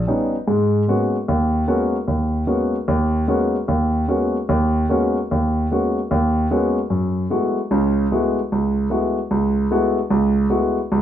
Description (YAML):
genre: jazz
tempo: 149 BPM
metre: 4/4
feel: swing 64% on 8ths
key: G# minor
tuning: A4 = 440 Hz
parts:
  - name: warm concert grand piano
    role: solo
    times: 0.1-11.0 s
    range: C#2 to F#4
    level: -17 LUFS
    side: equal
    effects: none
room: moderate large studio reverb, RT60 0.9 s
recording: minimal, uncompressed stereo recording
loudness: -17 LUFS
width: side -10 dB against mid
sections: 0.5-11.0 A section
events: none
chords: 0.5 G#m11; 6.9 F#m11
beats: 0.07 | 0.47 0.87 1.27 1.68 | 2.08 2.48 2.88 3.29 | 3.69 4.09 4.49 4.89 | 5.29 5.70 6.10 6.50 | 6.90 7.30 7.70 8.10 | 8.50 8.90 9.30 9.70 | 10.10 10.50 10.90